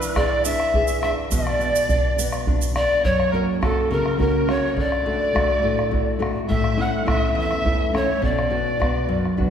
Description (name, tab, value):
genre	andean folk, Andean ensemble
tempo	69 BPM (dotted quarters)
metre	6/8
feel	straight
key	B minor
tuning	A4 = 439 Hz
part	rich erhu	second line	0.0-9.4 s	A4 to F#5	-28 LUFS	right 1 dB	none
part	nylon-string guitar	accompaniment	0.0-9.5 s	E2 to G#4	-24 LUFS	left 2 dB	none
part	bombo	percussion	0.0-9.5 s	none	-24 LUFS	right 1 dB	none
part	tube shaker	percussion	0.0-2.7 s	none	-32 LUFS	right 6 dB	none
part	breathy reedy pan flute	melody	0.2-9.4 s	A4 to F#5	-24 LUFS	equal	none
room	wet concert hall reverb, RT60 2.0 s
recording	heard from further back in the room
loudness	-18 LUFS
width	side -8 dB against mid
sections	0.0-3.0 A section; 3.0-9.5 B section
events	none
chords	0.0 E7; 1.3 Bm; 3.0 F#; 4.8 D; 6.5 A; 8.2 Bm